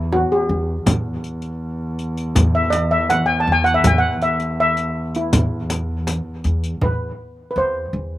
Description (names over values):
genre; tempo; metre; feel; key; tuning
Arabic maqam ensemble; 81 BPM; 4/4; straight; unclear; A4 = 440 Hz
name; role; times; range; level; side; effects
steel pan; melody; 0.0-8.2 s; E4 to A5; -19 LUFS; equal; none
upright bass; bass; 0.0-8.2 s; E2; -21 LUFS; equal; none
muted double bass; drone; 0.0-6.9 s; E2; -26 LUFS; equal; none
frame drum; percussion; 0.1-7.0 s; none; -22 LUFS; right 1 dB; none
riq; percussion; 0.9-6.7 s; none; -26 LUFS; left 4 dB; none
room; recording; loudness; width
light reverb; recorded outdoors, with no room sound; -17 LUFS; side -15 dB against mid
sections
0.0-6.8 A section; 6.8-8.2 B section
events
none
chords
none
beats
0.12 | 0.87 1.61 2.36 3.10 | 3.85 4.59 5.33 6.08 | 6.82 7.57